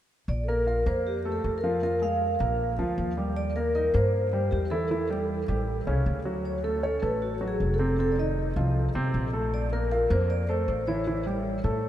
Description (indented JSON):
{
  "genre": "Afro-Cuban jazz",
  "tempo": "156 BPM",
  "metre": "4/4",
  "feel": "straight",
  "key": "unclear",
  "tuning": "A4 = 440 Hz",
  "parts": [
    { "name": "vibraphone with medium mallets", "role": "melody", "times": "0.3-11.9 s", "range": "F#4 to F5", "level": "-29 LUFS", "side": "equal", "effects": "tape echo" },
    { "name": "upright bass", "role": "bass", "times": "0.3-11.9 s", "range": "F1 to A2", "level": "-29 LUFS", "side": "equal", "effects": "none" },
    { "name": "warm grand piano", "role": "accompaniment", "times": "0.5-11.9 s", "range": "C3 to F5", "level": "-30 LUFS", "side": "right 1 dB", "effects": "none" }
  ],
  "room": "moderate huge ambient reverb, RT60 7.5 s",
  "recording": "in a vast, echoing space",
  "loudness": "-24 LUFS",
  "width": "side -11 dB against mid",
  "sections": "0.3-11.9 A section",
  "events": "none",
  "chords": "0.3 Bb5; 1.8 Fmadd11; 2.6 Bb6; 3.4 Eb; 4.9 Emadd11; 5.7 A7#9; 6.4 Dmaj7; 8.0 F7; 9.5 Bbsus2; 11.1 A7"
}